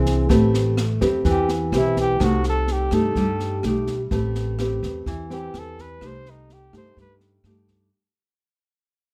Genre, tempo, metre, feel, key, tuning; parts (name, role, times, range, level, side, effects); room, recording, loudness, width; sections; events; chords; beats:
bossa nova; 126 BPM; 4/4; straight; A4 = 439 Hz
nylon-string guitar; accompaniment; 0.0-7.9 s; C3 to B4; -25 LUFS; equal
upright bass; bass; 0.0-7.9 s; A1 to G2; -27 LUFS; equal
open jazz drum kit; drums; 0.1-7.7 s; kick drum, rim click, snare drum; -31 LUFS; equal
warm flugelhorn; melody; 1.3-7.1 s; B3 to C5; -29 LUFS; equal
little or no reverb; -21 LUFS; mono
0.3-7.9 A section
fade-out 0.3-7.9; flugelhorn solo 0.3-7.9
0.3 Am9; 2.2 Cm6; 4.1 Am9; 6.0 Cm6
| 0.30 0.77 1.25 1.73 | 2.20 2.68 3.15 3.63 | 4.11 4.58 5.06 5.54 | 6.01 6.49 6.96 7.44